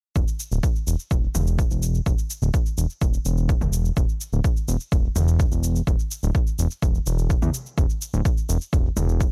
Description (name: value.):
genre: melodic techno.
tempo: 126 BPM.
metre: 4/4.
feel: straight.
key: unclear.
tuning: A4 = 440 Hz.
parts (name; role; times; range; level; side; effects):
fat analog bass; bass; 0.2-9.3 s; D1 to E2; -24 LUFS; equal; sidechain pumping.
electronic kick drum; drums; 0.2-9.3 s; none; -24 LUFS; equal; none.
electronic shaker and toms; drums; 0.2-9.3 s; none; -35 LUFS; equal; none.
room: little or no reverb.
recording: echo-heavy mix.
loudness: -23 LUFS.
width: mono.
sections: 0.2-9.3 A section.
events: none.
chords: none.